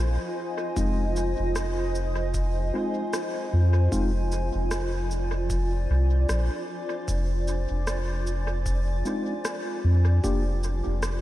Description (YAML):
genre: ambient dub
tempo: 76 BPM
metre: 4/4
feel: swing 57% on 16ths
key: F dorian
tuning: A4 = 441 Hz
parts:
  - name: granular cloud pad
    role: sustained chords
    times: 0.0-11.2 s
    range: F4 to Ab5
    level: -31 LUFS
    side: equal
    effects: built-in reverb
  - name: soft dub sub bass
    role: bass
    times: 0.0-11.2 s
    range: F1 to F2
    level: -24 LUFS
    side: equal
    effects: tube saturation
  - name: mellow tine electric piano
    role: stabs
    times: 0.8-4.1, 9.1-10.4 s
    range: Ab3 to G4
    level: -32 LUFS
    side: left 2 dB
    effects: fast stereo tremolo, dub echo
  - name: electronic cabasa and rim click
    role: drums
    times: 0.8-11.2 s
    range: none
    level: -37 LUFS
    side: equal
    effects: small room ambience, dub echo
  - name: electronic kick drum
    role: drums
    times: 0.8-10.4 s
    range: none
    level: -31 LUFS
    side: equal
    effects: overdrive, small room ambience
room: light reverb, digital ambience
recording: vinyl crackle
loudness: -24 LUFS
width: side -14 dB against mid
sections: 0.0-11.2 A section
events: none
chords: 0.0 Fm7; 10.2 Gm7/F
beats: | 0.77 1.56 2.35 3.13 | 3.92 4.71 5.50 6.29 | 7.08 7.87 8.66 9.45 | 10.24 11.03